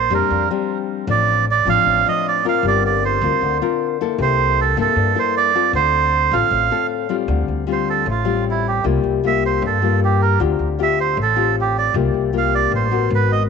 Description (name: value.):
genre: bossa nova.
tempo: 155 BPM.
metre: 4/4.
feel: straight.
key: D minor from 7.3 s.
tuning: A4 = 441 Hz.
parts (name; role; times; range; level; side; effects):
melodica; melody; 0.0-13.4 s; E4 to F5; -18 LUFS; right 10 dB; tape echo.
nylon-string guitar; accompaniment; 0.0-13.5 s; G2 to Bb4; -21 LUFS; left 14 dB; none.
upright bass; bass; 0.0-13.5 s; G1 to G2; -21 LUFS; equal; none.
room: light reverb.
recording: 1960s-style stereo with parts hard left and right, nothing above 8.0 kHz.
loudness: -15 LUFS.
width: side -6 dB against mid.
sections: 0.0-7.3 A section; 7.3-13.5 B section.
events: melodica solo 7.3-13.5.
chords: 0.0 Bb69; 1.1 Dm7/A; 2.6 Gm11; 4.2 C13; 5.7 Dm7; 8.8 C7sus4; 10.4 Dm7; 11.9 C7sus4; 13.1 G#m9.